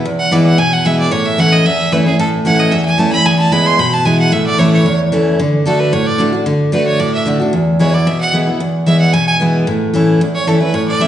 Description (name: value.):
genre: bluegrass.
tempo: 225 BPM.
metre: 4/4.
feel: straight.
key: A major.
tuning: A4 = 440 Hz.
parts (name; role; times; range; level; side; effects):
picked steel-string acoustic guitar; accompaniment; 0.0-11.1 s; E2 to F#4; -12 LUFS; equal; none.
bright fiddle; melody; 0.2-11.1 s; G#4 to C6; -16 LUFS; right 2 dB; none.
room: wet recital hall reverb, RT60 1.4 s.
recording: recorded in a church or concert hall, nothing above 10.5 kHz.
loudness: -11 LUFS.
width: side -11 dB against mid.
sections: 0.0-5.4 A section; 5.4-11.1 B section.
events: fiddle solo 0.0-5.4.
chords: 0.0 E; 1.1 A; 3.3 E; 4.3 A; 5.4 D; 7.5 E; 9.7 A.